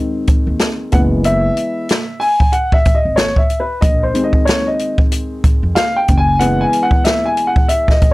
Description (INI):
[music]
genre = hip hop, jazz-hop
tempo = 93 BPM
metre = 4/4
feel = swing 58% on 16ths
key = unclear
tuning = A4 = 440 Hz
[part]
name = dark upright piano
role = accompaniment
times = 0.0-8.1 s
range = Eb3 to Ab5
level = -16 LUFS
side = left 1 dB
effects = none
[part]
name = open jazz drum kit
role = drums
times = 0.3-8.1 s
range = hi-hat, kick drum, snare drum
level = -14 LUFS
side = equal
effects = none
[part]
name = upright bass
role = bass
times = 0.5-6.6 s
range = Gb1 to F2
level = -18 LUFS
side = equal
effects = tube saturation
[sound]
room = little or no reverb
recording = dry, gritty hardware recording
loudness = -12 LUFS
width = side -20 dB against mid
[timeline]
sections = 0.0-8.1 A section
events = upright piano solo 0.0-8.1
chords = 0.0 Bb9sus4 (rootless); 0.9 Gb9sus4; 3.8 Bb9sus4; 6.1 Gb9sus4